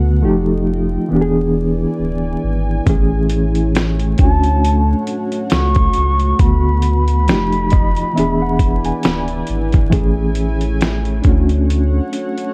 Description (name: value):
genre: lo-fi hip hop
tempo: 68 BPM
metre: 4/4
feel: swing 56% on 16ths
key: unclear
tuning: A4 = 435 Hz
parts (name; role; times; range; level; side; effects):
- reed electric piano; accompaniment; 0.0-12.5 s; D3 to B5; -21 LUFS; equal; fast tremolo, cassette tape, low-pass filter
- dark analog pad; sustained chords; 0.0-12.5 s; A3 to G#5; -28 LUFS; equal; chorus, low-pass filter
- sub bass with octave; bass; 0.0-12.0 s; D1 to D2; -20 LUFS; equal; none
- dusty soul sampler-style drum kit; drums; 2.9-12.5 s; hi-hat, kick drum, snare drum; -18 LUFS; equal; vintage 12-bit sampler grit
- breathy mellow concert flute; melody; 4.2-9.5 s; A5 to C#6; -23 LUFS; equal; low-pass filter
room: little or no reverb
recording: dark, warm production, vinyl crackle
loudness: -16 LUFS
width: mono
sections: 0.0-12.5 A section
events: reed electric piano fill 7.3-9.9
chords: 0.2 F9; 1.1 E7; 2.9 Amaj7; 4.2 Dmaj7; 6.4 Bm7/D; 7.3 F9; 8.2 E7; 9.9 Amaj7; 11.2 Dmaj7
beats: 0.22 1.10 1.98 | 2.87 3.75 4.63 5.51 | 6.39 7.28 8.16 9.04 | 9.92 10.81 11.69